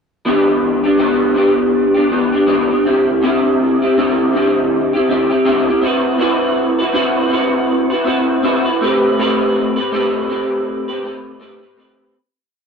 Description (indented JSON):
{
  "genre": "indie pop",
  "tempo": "81 BPM",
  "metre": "4/4",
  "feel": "swing 60% on 16ths",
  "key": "unclear",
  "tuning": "A4 = 441 Hz",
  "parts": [
    { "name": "electric guitar through a small old amp", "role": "solo", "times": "0.3-12.2 s", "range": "D3 to B4", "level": "-13 LUFS", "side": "equal", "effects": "ensemble chorus, vibrato effect" }
  ],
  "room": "moderate studio reverb, RT60 0.6 s",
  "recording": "dark, warm production",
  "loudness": "-13 LUFS",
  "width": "side -6 dB against mid",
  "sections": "0.2-12.1 A section",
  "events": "fade-out 9.2-12.1",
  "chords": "0.2 Em7; 2.8 D9sus4; 5.8 Cmaj7#11; 8.8 Am9"
}